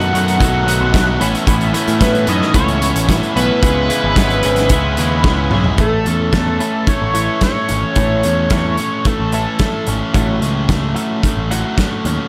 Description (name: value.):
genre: indie rock.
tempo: 111 BPM.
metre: 4/4.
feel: straight.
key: A lydian.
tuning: A4 = 441 Hz.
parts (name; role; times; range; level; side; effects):
overdriven synth lead; melody; 0.0-9.9 s; A4 to F#5; -22 LUFS; equal; phaser, analog delay.
bell-like tine electric piano; second line; 0.0-5.5 s; B3 to F#4; -28 LUFS; equal; none.
tonewheel organ; sustained chords; 0.0-5.8 s; G#4 to B5; -33 LUFS; equal; none.
cranked stack guitar; riff; 0.0-12.3 s; A2 to A4; -23 LUFS; equal; overdrive.
twangy electric guitar; riff; 0.0-12.3 s; A2 to F#4; -25 LUFS; equal; analog chorus.
growling picked electric bass; bass; 0.0-12.2 s; G#1 to A2; -21 LUFS; equal; overdrive.
loose indie drum kit; drums; 0.0-12.2 s; hi-hat, kick drum, snare drum, toms; -20 LUFS; equal; none.
room: light reverb.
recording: none.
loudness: -15 LUFS.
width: mono.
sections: 0.0-5.8 A section; 5.8-12.3 B section.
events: drum fill 5.2-5.8.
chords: 0.0 B7; 1.2 Aadd9; 3.6 C#m7; 5.8 A; 10.1 F#m/A.